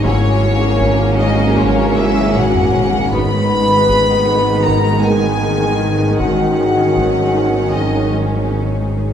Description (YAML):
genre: cinematic, suspense film score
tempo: 78 BPM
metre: 4/4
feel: straight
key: G# minor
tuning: A4 = 440 Hz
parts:
  - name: clear studio violin section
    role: melody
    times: 0.0-8.1 s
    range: C#5 to B5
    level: -20 LUFS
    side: left 1 dB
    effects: none
  - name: clear studio violin section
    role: second line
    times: 0.0-9.1 s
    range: A#3 to C#4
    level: -23 LUFS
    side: left 2 dB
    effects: none
  - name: dark studio viola section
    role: accompaniment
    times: 0.0-9.1 s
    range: C#3 to G#3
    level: -22 LUFS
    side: right 1 dB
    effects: none
  - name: mellow French horn section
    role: sustained chords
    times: 0.0-8.1 s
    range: C#4 to D#5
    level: -19 LUFS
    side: left 4 dB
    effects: none
  - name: soft additive organ-like pad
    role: sustained chords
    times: 0.0-9.1 s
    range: D#4 to D#5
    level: -26 LUFS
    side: right 1 dB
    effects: ensemble chorus, built-in reverb
  - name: warm trombone section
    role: sustained chords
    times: 0.0-9.1 s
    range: B2 to C#4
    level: -24 LUFS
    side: right 5 dB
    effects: none
  - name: marimba with medium hard mallets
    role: riff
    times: 0.0-9.1 s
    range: G#2 to G#3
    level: -22 LUFS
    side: left 2 dB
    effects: none
  - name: warm studio cello section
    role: bass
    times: 0.0-9.1 s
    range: G#2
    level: -23 LUFS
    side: right 2 dB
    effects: none
  - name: organ-like drone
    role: drone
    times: 0.0-9.1 s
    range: G#1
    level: -25 LUFS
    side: equal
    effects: ensemble chorus, built-in reverb
  - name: taiko ensemble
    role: drums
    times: 0.0-8.5 s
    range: none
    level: -25 LUFS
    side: right 1 dB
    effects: none
  - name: vibraphone with medium hard mallets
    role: texture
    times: 0.0-9.1 s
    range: A#3 to F#5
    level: -26 LUFS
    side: left 1 dB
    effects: none
  - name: warm studio double bass section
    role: bass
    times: 0.1-9.1 s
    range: G#1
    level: -24 LUFS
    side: right 4 dB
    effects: none
room: moderate scoring stage reverb, RT60 1.7 s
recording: dark, warm production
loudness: -12 LUFS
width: side -8 dB against mid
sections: 0.0-9.1 A section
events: drum fill 2.4-3.1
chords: 0.0 F#/G#; 3.1 G#m; 6.2 Badd9/G# (rootless)